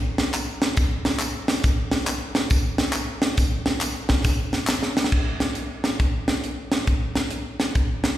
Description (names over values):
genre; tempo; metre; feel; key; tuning
gospel; 138 BPM; 4/4; swing 65% on 8ths; none; none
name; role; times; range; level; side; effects
crisp fusion drum kit; drums; 0.2-8.1 s; crash cymbal, hi-hat, kick drum, snare drum; -21 LUFS; equal; slapback echo
tambourine and handclaps; percussion; 0.2-5.0 s; none; -30 LUFS; left 2 dB; slapback echo
room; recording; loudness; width
moderate club reverb, RT60 0.6 s; live gig heard through the venue's PA, recital hall reverb; -21 LUFS; side -13 dB against mid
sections
0.0-5.1 A section; 5.1-8.2 B section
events
drum fill 4.3-5.1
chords
none